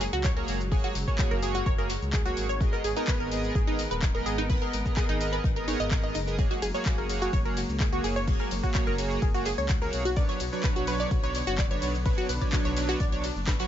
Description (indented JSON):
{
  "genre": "progressive house",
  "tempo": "127 BPM",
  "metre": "4/4",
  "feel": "straight",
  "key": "F# major",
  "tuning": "A4 = 440 Hz",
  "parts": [
    { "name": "warm studio string section", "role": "sustained chords", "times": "0.0-13.7 s", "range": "A#2 to C#5", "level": "-36 LUFS", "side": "equal", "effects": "sidechain pumping" },
    { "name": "wide unison pluck", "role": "arpeggios", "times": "0.0-13.6 s", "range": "D#4 to D#5", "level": "-32 LUFS", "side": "equal", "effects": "sidechain pumping, ping-pong delay" },
    { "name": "chorused polysynth", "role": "stabs", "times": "0.0-13.7 s", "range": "F#3 to E#5", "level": "-34 LUFS", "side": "right 3 dB", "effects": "sidechain pumping, ping-pong delay" },
    { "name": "dark detuned saw bass", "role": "bass", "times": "0.0-13.7 s", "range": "D#1 to C#2", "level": "-33 LUFS", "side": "equal", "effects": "tube saturation, sidechain pumping" },
    { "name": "house drum kit", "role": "drums", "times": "0.0-13.6 s", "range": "handclaps, hi-hat, ride cymbal, shaker, snare drum", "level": "-37 LUFS", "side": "left 2 dB", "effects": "overdrive, sidechain pumping on perc, sidechain pumping on hats, sidechain pumping on toms, sidechain pumping on cymbals" },
    { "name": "soft brush drum kit", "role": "drums", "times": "0.0-13.7 s", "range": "hi-hat, snare drum", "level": "-43 LUFS", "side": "right 2 dB", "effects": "none" },
    { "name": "electronic kick drum", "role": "drums", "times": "0.2-13.6 s", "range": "none", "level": "-27 LUFS", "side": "equal", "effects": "none" }
  ],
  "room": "digital ambience",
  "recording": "nothing above 7.6 kHz",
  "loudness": "-25 LUFS",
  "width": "side -11 dB against mid",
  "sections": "0.0-13.7 A section",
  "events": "drum fill 13.5",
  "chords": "0.0 F#add9; 2.6 G#madd9; 6.4 F#add9; 10.2 Bmadd9"
}